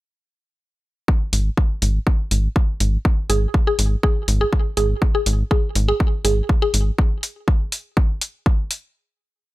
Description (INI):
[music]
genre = minimal techno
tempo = 122 BPM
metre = 4/4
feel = swing 53% on 16ths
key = unclear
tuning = A4 = 440 Hz
[part]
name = electronic kick drum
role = drums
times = 1.1-8.6 s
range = none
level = -17 LUFS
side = equal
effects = none
[part]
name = rubbery square bass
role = bass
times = 1.3-6.9 s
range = G#1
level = -18 LUFS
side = equal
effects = sidechain pumping
[part]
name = electronic hi-hat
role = drums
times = 1.3-8.8 s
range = none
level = -23 LUFS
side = equal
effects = none
[part]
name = mallet-like synth pluck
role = riff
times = 3.3-6.7 s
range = G#4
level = -23 LUFS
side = equal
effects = chorus, sidechain pumping, tape echo
[sound]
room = little or no reverb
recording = none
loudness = -17 LUFS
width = side -18 dB against mid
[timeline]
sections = 1.1-9.0 groove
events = none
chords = none